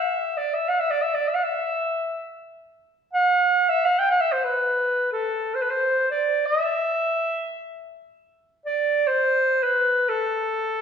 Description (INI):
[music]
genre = Arabic maqam ensemble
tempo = free time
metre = none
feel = none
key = E maqam bayati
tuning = A4 = 440 Hz
[part]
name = warm clarinet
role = solo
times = 0.0-10.8 s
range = A4 to G5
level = -20 LUFS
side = equal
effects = none
[sound]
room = wet recital hall reverb, RT60 1.6 s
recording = recorded in a church or concert hall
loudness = -20 LUFS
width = side -7 dB against mid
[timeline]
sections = 0.0-10.8 A section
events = none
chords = none